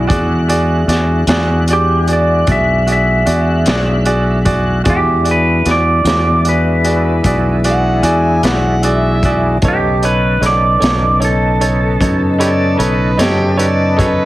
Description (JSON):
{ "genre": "slow blues", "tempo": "50 BPM (dotted quarters)", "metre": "12/8", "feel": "straight", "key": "E mixolydian", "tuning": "A4 = 440 Hz", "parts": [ { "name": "clean lap steel guitar", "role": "melody", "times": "0.0-12.8 s", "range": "G4 to E5", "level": "-16 LUFS", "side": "right 1 dB", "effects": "plate reverb" }, { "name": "tonewheel organ", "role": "sustained chords", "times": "0.0-14.3 s", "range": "C#3 to F#5", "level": "-20 LUFS", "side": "left 1 dB", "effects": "slow rotary speaker, chorus vibrato, plate reverb" }, { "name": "fingered electric bass", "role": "bass", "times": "0.0-14.3 s", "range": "B1 to F#2", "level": "-15 LUFS", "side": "equal", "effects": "none" }, { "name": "bright baby grand piano", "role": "accompaniment", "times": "0.1-14.3 s", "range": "D#4 to D5", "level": "-19 LUFS", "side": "right 2 dB", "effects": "plate reverb" }, { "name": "crunchy breakbeat drum kit", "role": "drums", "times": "0.1-14.2 s", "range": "hi-hat, kick drum, snare drum", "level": "-19 LUFS", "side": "equal", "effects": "none" }, { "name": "overdriven harmonica", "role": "second line", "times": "7.7-14.3 s", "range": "F#4 to G#5", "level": "-19 LUFS", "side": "equal", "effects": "plate reverb" } ], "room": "moderate club reverb, RT60 0.8 s", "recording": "heavily compressed radio sound, multiband compression", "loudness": "-11 LUFS", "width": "side -16 dB against mid", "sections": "0.0-14.3 A section", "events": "none", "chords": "0.0 E9; 9.6 B9" }